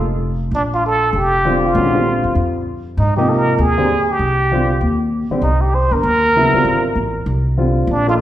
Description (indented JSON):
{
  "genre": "modal jazz",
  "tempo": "196 BPM",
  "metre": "4/4",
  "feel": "swing 61% on 8ths",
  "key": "unclear",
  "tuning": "A4 = 435 Hz",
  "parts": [
    { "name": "trumpet with plunger mute", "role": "melody", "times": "0.0-8.1 s", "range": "D4 to C5", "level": "-17 LUFS", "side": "right 1 dB", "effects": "none" },
    { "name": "upright bass", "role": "bass", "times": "0.0-8.2 s", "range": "F1 to Ab2", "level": "-18 LUFS", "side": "equal", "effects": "none" },
    { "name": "warm baby grand piano", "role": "accompaniment", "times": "1.4-8.2 s", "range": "C3 to A4", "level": "-19 LUFS", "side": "left 1 dB", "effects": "none" }
  ],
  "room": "wet recital hall reverb, RT60 1.5 s",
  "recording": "recorded in a church or concert hall",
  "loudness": "-14 LUFS",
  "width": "side -12 dB against mid",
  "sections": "0.0-8.2 A section",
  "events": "none",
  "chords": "0.0 Bbadd9; 3.0 Abmaj9",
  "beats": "0.22 | 0.53 0.84 1.14 1.45 | 1.76 2.06 2.37 2.67 | 2.98 3.29 3.59 3.90 | 4.21 4.51 4.82 5.12 | 5.43 5.74 6.04 6.35 | 6.66 6.96 7.27 7.57 | 7.88 8.19"
}